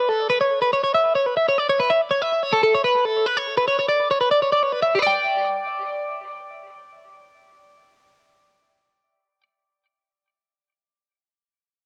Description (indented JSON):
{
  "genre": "rock",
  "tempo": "286 BPM (eighths)",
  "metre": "7/8",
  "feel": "straight",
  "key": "G lydian",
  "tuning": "A4 = 440 Hz",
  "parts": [
    { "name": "twelve-string electric guitar", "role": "solo", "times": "0.0-9.4 s", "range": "G4 to G5", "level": "-21 LUFS", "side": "equal", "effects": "cassette tape, analog delay" }
  ],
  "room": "moderate spring reverb, RT60 1.2 s, digital ambience",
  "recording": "home recording on cassette",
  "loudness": "-20 LUFS",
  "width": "mono",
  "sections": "0.0-4.9 A section; 4.9-7.9 B section",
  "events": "none",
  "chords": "0.0 B7(no3); 0.5 C#m7; 2.0 A; 3.5 Bmadd9; 4.9 G5"
}